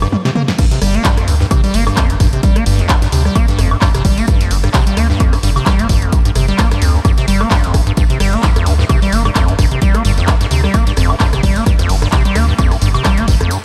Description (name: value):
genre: acid house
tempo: 130 BPM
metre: 4/4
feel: swing 56% on 16ths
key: G minor pentatonic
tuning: A4 = 440 Hz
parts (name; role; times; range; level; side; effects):
- liquid acid bass; riff; 0.0-13.6 s; F2 to Bb3; -18 LUFS; equal; chorus, overdrive, sidechain pumping, diffuse ambient delay
- round analog bass; bass; 0.0-13.4 s; G1 to D2; -17 LUFS; equal; tube saturation, sidechain pumping
- punchy analog drum machine; drums; 0.0-13.6 s; crash cymbal, handclaps, hi-hat, rim click, snare drum, toms, woodblock; -23 LUFS; equal; none
- electronic kick drum; drums; 0.6-13.4 s; none; -15 LUFS; equal; none
- vintage brush drum kit; drums; 0.6-13.6 s; hi-hat, snare drum, tambourine; -34 LUFS; equal; none
room: light reverb, small room ambience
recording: none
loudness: -13 LUFS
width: mono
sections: 0.6-13.6 A section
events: drum fill 0.1-0.6; drop 0.6-13.6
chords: 0.0 Gm; 0.6 G7(no3)